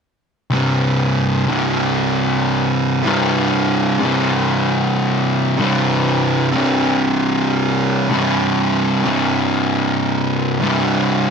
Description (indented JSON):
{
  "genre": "metal",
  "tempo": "95 BPM",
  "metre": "4/4",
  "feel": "straight",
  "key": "unclear",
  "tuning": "A4 = 443 Hz",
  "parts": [
    { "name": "fuzz guitar", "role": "solo", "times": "0.5-11.3 s", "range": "C2 to C3", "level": "-15 LUFS", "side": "equal", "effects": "distortion, digital delay" }
  ],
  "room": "light reverb",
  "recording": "none",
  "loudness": "-15 LUFS",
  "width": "side -6 dB against mid",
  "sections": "0.5-5.6 A section; 5.6-11.3 B section",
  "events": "none",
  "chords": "0.5 C5"
}